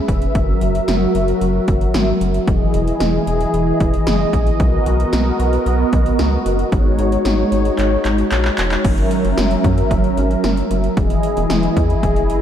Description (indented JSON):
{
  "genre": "synth-pop",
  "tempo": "113 BPM",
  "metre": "4/4",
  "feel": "straight",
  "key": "unclear",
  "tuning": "A4 = 440 Hz",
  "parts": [
    { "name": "warm analog pad", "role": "sustained chords", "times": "0.0-12.4 s", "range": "E3 to E5", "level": "-18 LUFS", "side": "equal", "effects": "chorus" },
    { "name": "rubbery square bass", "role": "bass", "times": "0.1-12.4 s", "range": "E1 to F#2", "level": "-19 LUFS", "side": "equal", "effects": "none" },
    { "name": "80s electronic pad drums", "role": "drums", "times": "0.1-12.4 s", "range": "crash cymbal, handclaps, hi-hat, kick drum, snare drum", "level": "-20 LUFS", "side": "equal", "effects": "overdrive" }
  ],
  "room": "moderate cathedral reverb, RT60 5.9 s",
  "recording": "dreamy mix soaked in reverb",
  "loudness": "-14 LUFS",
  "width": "side -10 dB against mid",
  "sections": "0.0-8.8 A section; 8.8-12.4 B section",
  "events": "drum fill 7.8-8.8",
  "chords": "0.4 F#7; 2.5 Emaj7; 4.6 Bmaj7; 6.7 G#7sus4; 8.8 F#7; 11.0 Emaj7"
}